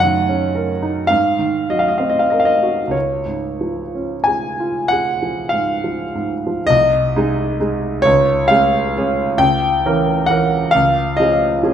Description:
classical, romantic nocturne for solo piano; 30-47 BPM (dotted quarters); 6/8; rubato; Db major; A4 = 435 Hz
clear concert grand piano; solo; 0.0-11.7 s; C2 to Ab5; -14 LUFS; equal
wet recital hall reverb, RT60 1.6 s; minimal, uncompressed stereo recording; -15 LUFS; side -9 dB against mid
0.0-6.7 A section; 6.7-11.7 B section
0.0 Gb6; 1.1 Ab9; 2.9 Db; 6.7 Ab/C; 8.1 Db; 9.4 Dbdim7; 10.7 Db
1.10 | 2.94 4.91 | 6.71 8.06 | 9.41 10.72

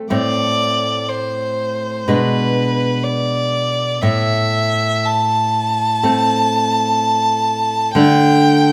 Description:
romantic duo for violin and classical guitar; 62 BPM; 4/4; rubato; A minor; A4 = 440 Hz
nylon-string guitar; accompaniment; 0.0-8.7 s; A2 to D4; -20 LUFS; equal
clear violin; melody; 0.1-8.7 s; B4 to A5; -19 LUFS; equal
moderate recital hall reverb, RT60 1.6 s; -17 LUFS; mono
0.1-8.7 A section
0.1 Am; 2.1 G#dim/B; 4.0 Am; 7.9 D5
| 0.10 1.08 2.07 3.05 | 4.01 5.04 6.02 6.98 | 7.95

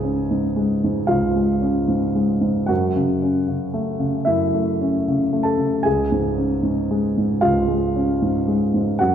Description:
neoclassical minimalist piano; 76 BPM; 4/4; rubato; A4 = 439 Hz
warm concert grand piano; solo; 0.0-9.1 s; C#2 to A5; -18 LUFS; equal
wet scoring stage reverb, RT60 1.7 s; recorded in a church or concert hall; -18 LUFS; side -9 dB against mid
0.0-9.1 A section
0.0 C#; 2.7 F#m7; 5.9 C#
0.30 1.10 1.90 | 2.70 3.50 4.28 5.07 | 5.86 6.65 7.43 8.21 | 8.99

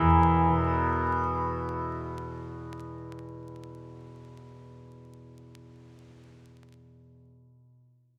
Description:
indian classical; 154 BPM; 3/4; straight; E major; A4 = 440 Hz
santur; melody; 0.0-2.1 s; E4 to A#4; -30 LUFS; equal
tanpura; drone; 0.0-7.6 s; E2 to E3; -33 LUFS; equal
wet club reverb, RT60 0.6 s; vinyl crackle; -28 LUFS; mono
0.11 0.50

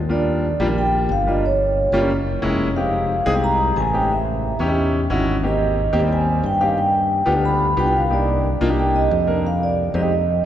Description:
Afro-Cuban jazz; 180 BPM; 4/4; straight; Eb major; A4 = 440 Hz
fingered electric bass; bass; 0.0-10.4 s; F1 to G2; -22 LUFS; equal
vibraphone with soft mallets; melody; 0.1-10.5 s; Db5 to B5; -21 LUFS; right 1 dB
warm baby grand piano; accompaniment; 0.1-10.1 s; G3 to Bb4; -22 LUFS; left 1 dB
wet cathedral reverb, RT60 4.8 s; recorded in a church or concert hall; -17 LUFS; side -11 dB against mid
0.1-10.5 A section
0.1 Ebmaj7; 1.4 Gm7b5; 2.1 Gb9; 2.8 Fm9; 4.1 A7#11; 5.4 Abmaj9; 6.8 G7; 8.1 Cm9; 9.4 Fm7
| 0.09 0.43 0.76 1.10 | 1.43 1.76 2.10 2.43 | 2.76 3.10 3.43 3.77 | 4.10 4.43 4.77 5.10 | 5.43 5.77 6.10 6.44 | 6.77 7.11 7.44 7.77 | 8.11 8.44 8.78 9.11 | 9.44 9.78 10.11 10.45

